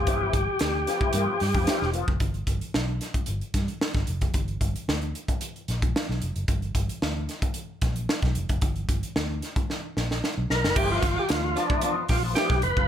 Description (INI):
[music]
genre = funk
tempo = 112 BPM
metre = 4/4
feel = straight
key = G mixolydian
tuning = A4 = 443 Hz
[part]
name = overdriven tonewheel organ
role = melody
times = 0.0-1.9, 10.5-12.9 s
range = D4 to B4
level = -26 LUFS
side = left 1 dB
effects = fast rotary speaker
[part]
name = vintage hollow-body jazz guitar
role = accompaniment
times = 0.0-2.1, 10.8-12.9 s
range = F3 to F4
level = -31 LUFS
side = left 4 dB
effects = wah
[part]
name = vintage muted fingered electric bass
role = bass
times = 0.0-12.9 s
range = E1 to G2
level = -29 LUFS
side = equal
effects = none
[part]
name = crisp fusion drum kit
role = drums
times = 0.1-12.9 s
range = crash cymbal, hi-hat, kick drum, snare drum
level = -27 LUFS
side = equal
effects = none
[part]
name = breathy tenor saxophone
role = second line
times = 10.8-12.6 s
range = F4 to G4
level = -32 LUFS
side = right 3 dB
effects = none
[sound]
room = light reverb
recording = none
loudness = -24 LUFS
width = side -10 dB against mid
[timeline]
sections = 0.0-2.2 A section; 2.2-10.8 B section; 10.8-12.9 A section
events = drum fill 9.7-10.8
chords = 0.0 G6; 2.2 G; 10.8 G6